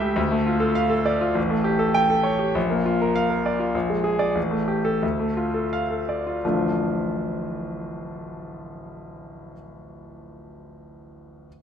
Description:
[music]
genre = classical, virtuoso piano study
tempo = 83-102 BPM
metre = 2/4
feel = rubato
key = D minor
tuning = A4 = 441 Hz
[part]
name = clear grand piano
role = solo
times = 0.0-11.5 s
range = D1 to G5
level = -22 LUFS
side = equal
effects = none
[sound]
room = moderate scoring stage reverb, RT60 1.7 s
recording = none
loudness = -20 LUFS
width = side -8 dB against mid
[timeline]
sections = 0.0-6.4 A section; 6.4-9.3 B section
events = slowing down 3.2-6.4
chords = 0.2 Dm; 1.4 A7; 2.6 Bb; 3.7 Bb7; 4.4 Gsus2/A; 5.0 Dm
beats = | 0.18 0.77 | 1.37 1.96 | 2.56 3.15 | 3.74 4.36 | 5.02 5.71 | 6.43 7.14 | 7.85 8.56

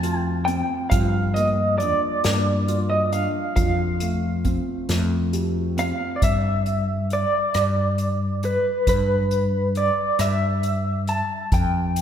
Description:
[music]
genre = acoustic folk-pop ballad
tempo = 45 BPM (dotted quarters)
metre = 6/8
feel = straight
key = F mixolydian, G mixolydian from 6.2 s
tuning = A4 = 441 Hz
[part]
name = electric guitar through a small old amp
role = melody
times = 0.0-12.0 s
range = B4 to A5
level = -23 LUFS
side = right 1 dB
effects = tremolo
[part]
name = felt-muted upright piano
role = arpeggios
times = 0.0-6.3 s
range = F3 to G4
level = -28 LUFS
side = right 1 dB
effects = none
[part]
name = mellow fretless electric bass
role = bass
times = 0.0-12.0 s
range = F2 to G2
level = -23 LUFS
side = equal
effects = none
[part]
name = unplugged drum kit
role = drums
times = 0.0-12.0 s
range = hi-hat, kick drum, rim click, snare drum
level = -26 LUFS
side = equal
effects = none
[sound]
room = wet concert hall reverb, RT60 2.0 s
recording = recorded in a church or concert hall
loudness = -20 LUFS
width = side -9 dB against mid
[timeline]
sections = 0.0-6.2 A section; 6.2-12.0 A section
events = none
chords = 0.0 F; 0.9 Gm7; 3.6 Fadd9; 6.2 G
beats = | 0.91 2.24 | 3.56 4.89 | 6.22 7.55 | 8.88 10.20 | 11.53

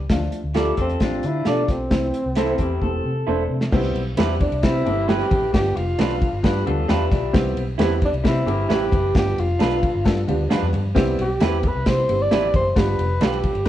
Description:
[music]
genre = uptempo 1960s-style soul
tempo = 133 BPM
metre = 4/4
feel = straight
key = C major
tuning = A4 = 440 Hz
[part]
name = vintage muted fingered electric bass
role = bass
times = 0.0-13.7 s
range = E1 to D3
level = -25 LUFS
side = equal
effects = none
[part]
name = warm upright piano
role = accompaniment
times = 0.1-13.7 s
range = E3 to G5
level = -26 LUFS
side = equal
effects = none
[part]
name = warm soul drum kit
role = drums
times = 0.1-13.7 s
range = crash cymbal, hi-hat, kick drum, ride cymbal, snare drum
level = -22 LUFS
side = equal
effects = none
[part]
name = electric guitar through a small old amp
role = riff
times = 0.5-9.1, 13.7 s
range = C4 to B4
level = -28 LUFS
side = left 4 dB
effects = none
[part]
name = electric guitar through a small old amp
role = stabs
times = 0.5-13.4 s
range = D4 to D5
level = -26 LUFS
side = right 5 dB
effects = none
[part]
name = breathy tenor saxophone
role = melody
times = 0.8-13.7 s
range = C4 to D5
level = -24 LUFS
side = equal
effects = none
[part]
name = congas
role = percussion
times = 3.7-13.7 s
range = none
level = -33 LUFS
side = right 1 dB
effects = none
[sound]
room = moderate stone room reverb, RT60 1.0 s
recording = band playing live in one room, cassette tape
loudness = -18 LUFS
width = side -12 dB against mid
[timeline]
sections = 0.0-3.7 A section; 3.7-13.7 B section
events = drum fill 2.8-3.7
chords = 0.1 Dm; 1.9 Am/C; 3.7 Cmaj7; 5.5 G7; 7.3 Cmaj7; 9.2 G7; 11.0 Cmaj7; 12.8 G7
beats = | 0.10 0.56 1.01 1.46 | 1.91 2.37 2.82 3.27 | 3.73 4.18 4.63 5.08 | 5.54 5.99 6.44 6.89 | 7.34 7.79 8.25 8.70 | 9.15 9.60 10.05 10.51 | 10.96 11.41 11.86 12.31 | 12.77 13.22 13.67

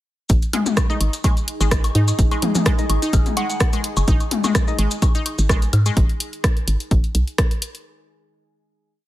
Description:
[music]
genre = minimal techno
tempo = 127 BPM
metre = 4/4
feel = swing 54% on 16ths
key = unclear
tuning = A4 = 442 Hz
[part]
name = hollow knocking FM bass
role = bass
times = 0.3-7.2 s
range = F#1 to G#2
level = -19 LUFS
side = equal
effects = sidechain pumping
[part]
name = electronic kick drum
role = drums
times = 0.3-7.5 s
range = none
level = -18 LUFS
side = equal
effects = none
[part]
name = punchy analog drum machine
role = drums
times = 0.3-7.8 s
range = hi-hat, rim click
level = -25 LUFS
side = equal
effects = none
[part]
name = maracas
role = percussion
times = 0.3-5.9 s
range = none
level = -30 LUFS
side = left 1 dB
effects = none
[part]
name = deep dark ambient pad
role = texture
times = 1.5-6.0 s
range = D#4 to G#5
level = -31 LUFS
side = right 2 dB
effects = chorus, built-in reverb, sidechain pumping
[part]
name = resonant blip pluck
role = riff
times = 0.5-5.9 s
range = G#3 to D#4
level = -29 LUFS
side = equal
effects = chorus, sidechain pumping, dub echo
[part]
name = electronic toms, woodblock and congas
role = percussion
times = 0.5-5.9 s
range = none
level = -25 LUFS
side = left 4 dB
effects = none
[part]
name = percussive organ stab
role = stabs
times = 0.9-4.8 s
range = G#3 to D#5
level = -33 LUFS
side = left 3 dB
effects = chorus, dub echo
[part]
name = soft synth bell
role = melody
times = 3.4-3.6 s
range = F#5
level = -29 LUFS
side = right 1 dB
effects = chorus, phaser, dub echo
[sound]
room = little or no reverb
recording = none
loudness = -17 LUFS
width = side -15 dB against mid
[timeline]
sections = 0.3-7.9 drop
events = drop 0.3-7.9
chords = 0.3 G#5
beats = | 0.30 0.77 1.24 1.72 | 2.19 2.66 3.13 3.60 | 4.08 4.55 5.02 5.50 | 5.97 6.44 6.91 7.38

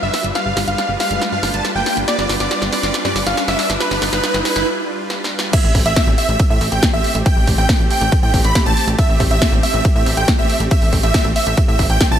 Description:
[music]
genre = uplifting trance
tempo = 139 BPM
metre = 4/4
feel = straight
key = A minor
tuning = A4 = 440 Hz
[part]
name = supersaw chords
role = melody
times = 0.0-12.2 s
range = B4 to B5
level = -21 LUFS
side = right 1 dB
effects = sidechain pumping, digital delay
[part]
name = warm concert grand piano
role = second line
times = 0.0-12.2 s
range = B4 to B5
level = -26 LUFS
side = left 1 dB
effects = vintage 12-bit sampler grit, sidechain pumping, ping-pong delay
[part]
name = supersaw pad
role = sustained chords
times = 0.0-12.2 s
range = G3 to B4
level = -24 LUFS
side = right 1 dB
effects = sidechain pumping
[part]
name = plucky analog bass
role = bass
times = 0.0-12.2 s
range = G1 to A2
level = -21 LUFS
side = equal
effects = sidechain pumping
[part]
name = riser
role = sound effects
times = 0.0-4.7 s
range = none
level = -25 LUFS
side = equal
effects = none
[part]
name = punchy analog drum machine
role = drums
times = 0.1-12.1 s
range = crash cymbal, hi-hat, ride cymbal, snare drum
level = -22 LUFS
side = equal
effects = overdrive, high-pass filter on snare, sidechain pumping on hats, high-pass filter on hats, sidechain pumping on cymbals, high-pass filter on cymbals, high-pass filter on room
[part]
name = electronic kick drum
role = drums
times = 5.5-12.1 s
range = none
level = -15 LUFS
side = equal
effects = overdrive
[sound]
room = light reverb, digital ambience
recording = none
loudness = -14 LUFS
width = side -10 dB against mid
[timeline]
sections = 0.0-5.5 A section; 5.5-12.2 B section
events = build-up 0.0-5.5; drum fill 0.0-4.7, 5.1-5.5; riser 0.0-4.7; break 4.7-5.5; drop 5.5-12.2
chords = 0.0 G7; 5.5 Am7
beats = | 0.35 0.78 1.22 1.65 | 2.08 2.51 2.94 3.37 | 3.81 4.24 4.67 5.10 | 5.53 5.96 6.40 6.83 | 7.26 7.69 8.12 8.55 | 8.99 9.42 9.85 10.28 | 10.71 11.14 11.58 12.01

